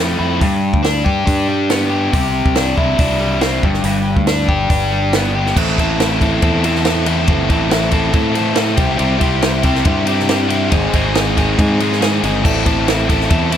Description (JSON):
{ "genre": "indie rock", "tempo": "140 BPM", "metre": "4/4", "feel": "straight", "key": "unclear", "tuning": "A4 = 439 Hz", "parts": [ { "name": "biting overdriven guitar", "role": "riff", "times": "0.0-13.6 s", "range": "G2 to A4", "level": "-16 LUFS", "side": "left 1 dB", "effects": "none" }, { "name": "growling fingered electric bass", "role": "bass", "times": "0.0-13.6 s", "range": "G1 to A2", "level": "-19 LUFS", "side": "equal", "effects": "overdrive" }, { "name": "compact cocktail drum kit", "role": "drums", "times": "0.4-13.6 s", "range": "crash cymbal, hi-hat, kick drum, ride cymbal, snare drum", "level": "-18 LUFS", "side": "equal", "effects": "none" } ], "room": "little or no reverb", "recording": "none", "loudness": "-13 LUFS", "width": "side -9 dB against mid", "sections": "0.0-5.6 A section; 5.6-13.6 B section", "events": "none", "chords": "0.4 G; 2.1 Cadd9; 3.6 G; 5.6 Am; 8.8 C; 10.7 Abmaj7; 12.5 Am" }